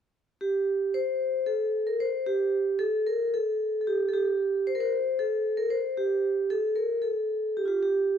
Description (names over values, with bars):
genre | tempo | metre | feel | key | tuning
turkish | 226 BPM (eighths) | 7/8 | straight | unclear | A4 = 440 Hz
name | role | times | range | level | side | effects
vibraphone with medium hard mallets | solo | 0.4-8.2 s | F4 to C5 | -25 LUFS | equal | none
room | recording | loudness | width
moderate recital hall reverb, RT60 1.6 s | close, detailed microphones | -25 LUFS | side -8 dB against mid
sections
0.4-8.2 A section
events
none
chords
none